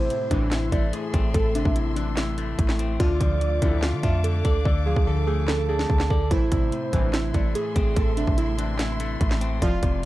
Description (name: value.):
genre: hip hop, trap.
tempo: 145 BPM.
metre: 4/4.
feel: half-time.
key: A harmonic minor.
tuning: A4 = 440 Hz.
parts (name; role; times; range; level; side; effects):
glassy digital keys; melody; 0.0-10.1 s; D4 to D5; -29 LUFS; right 2 dB; chorus, dub echo.
hollow clarinet-like synth lead; second line; 0.0-10.1 s; C5 to A5; -33 LUFS; right 3 dB; chorus, dub echo.
clean electric guitar; accompaniment; 0.0-10.1 s; F2 to D5; -30 LUFS; left 5 dB; dub echo.
dark symphonic string section; sustained chords; 0.0-10.1 s; A3 to D6; -38 LUFS; left 1 dB; none.
clean 808-style bass; bass; 0.0-10.1 s; F1 to D3; -25 LUFS; equal; none.
trap drum kit; drums; 0.1-9.9 s; handclaps, hi-hat, kick drum, snare drum; -25 LUFS; equal; vintage 12-bit sampler grit.
analog synth brass; stabs; 0.3-0.5, 3.0-3.8, 6.3-7.1, 9.6-9.7 s; A1 to F3; -32 LUFS; equal; chorus.
room: little or no reverb.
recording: echo-heavy mix.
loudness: -21 LUFS.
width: side -16 dB against mid.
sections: 0.0-10.1 A section.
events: hi-hats muted 4.7-6.3.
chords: 0.0 Am; 3.0 Dm; 6.3 Am.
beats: 0.10 0.52 0.93 | 1.34 1.76 2.17 2.58 | 3.00 3.41 3.83 4.24 | 4.65 5.07 5.48 5.90 | 6.31 6.72 7.14 7.55 | 7.96 8.38 8.79 9.21 | 9.62 10.03.